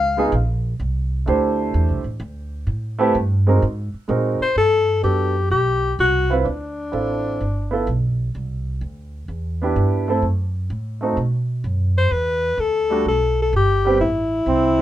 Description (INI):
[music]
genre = jazz, small-group swing and bop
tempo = 127 BPM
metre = 4/4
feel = swing 68% on 8ths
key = G major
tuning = A4 = 439 Hz
[part]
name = breathy alto saxophone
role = melody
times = 0.0-0.6, 4.4-8.2, 12.0-14.8 s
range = D4 to F5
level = -19 LUFS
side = left 3 dB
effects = none
[part]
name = upright bass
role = bass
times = 0.0-14.8 s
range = G1 to B2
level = -22 LUFS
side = right 1 dB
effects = none
[part]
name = warm grand piano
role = accompaniment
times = 0.2-14.8 s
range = F#3 to C5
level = -20 LUFS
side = right 3 dB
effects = none
[part]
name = clear trombone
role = second line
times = 14.5-14.8 s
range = C4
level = -19 LUFS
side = right 3 dB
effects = none
[sound]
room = light reverb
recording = minimal, uncompressed stereo recording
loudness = -18 LUFS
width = side -13 dB against mid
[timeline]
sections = 0.0-4.6 A section; 4.6-14.8 B section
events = none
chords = 0.0 C#13; 0.8 C69; 2.7 Am7; 3.6 Ab9; 4.6 Gmaj9; 6.5 Dm7; 7.4 G13; 8.3 Cmaj9; 10.2 F#dim; 11.2 B5; 12.1 Em11; 14.0 Am